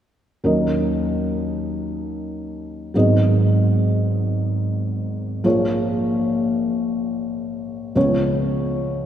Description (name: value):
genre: folk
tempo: 72 BPM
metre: 3/4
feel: straight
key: Eb minor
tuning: A4 = 440 Hz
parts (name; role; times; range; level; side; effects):
- felt-muted upright piano; accompaniment; 0.4-9.1 s; Ab1 to Eb5; -19 LUFS; equal; none
room: wet church reverb, RT60 3.4 s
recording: recorded in a church or concert hall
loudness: -18 LUFS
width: side -10 dB against mid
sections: 0.4-9.1 A section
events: none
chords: 0.4 Ebm7; 2.9 Abm7; 5.4 Bbm7; 8.0 Db7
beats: | 0.43 1.27 2.11 | 2.94 3.78 4.61 | 5.45 6.28 7.12 | 7.96 8.79